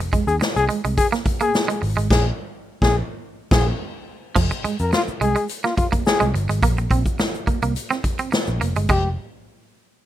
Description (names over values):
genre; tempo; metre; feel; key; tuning
funk; 106 BPM; 4/4; straight; F minor; A4 = 440 Hz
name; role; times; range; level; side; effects
twangy electric guitar; riff; 0.0-9.1 s; F3 to C4; -23 LUFS; right 6 dB; tremolo
vintage muted picked electric bass; bass; 0.0-9.2 s; F1 to F2; -22 LUFS; equal; none
swinging big-band drum kit; drums; 0.0-9.0 s; crash cymbal, hi-hat, kick drum, snare drum; -22 LUFS; equal; none
egg shaker; percussion; 0.1-9.2 s; none; -45 LUFS; left 5 dB; none
clear trombone; second line; 0.3-9.1 s; F4 to Bb4; -21 LUFS; left 4 dB; none
room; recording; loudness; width
little or no reverb; rough home demo mix; -18 LUFS; side -12 dB against mid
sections
0.0-4.4 A section; 4.4-8.9 B section; 8.9-10.1 C section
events
band accent 2.1-4.4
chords
0.0 N.C.; 4.4 Fm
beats
0.41 0.97 1.54 | 2.10 2.67 3.23 3.80 | 4.36 4.93 5.50 6.06 | 6.63 7.19 7.76 8.32 | 8.89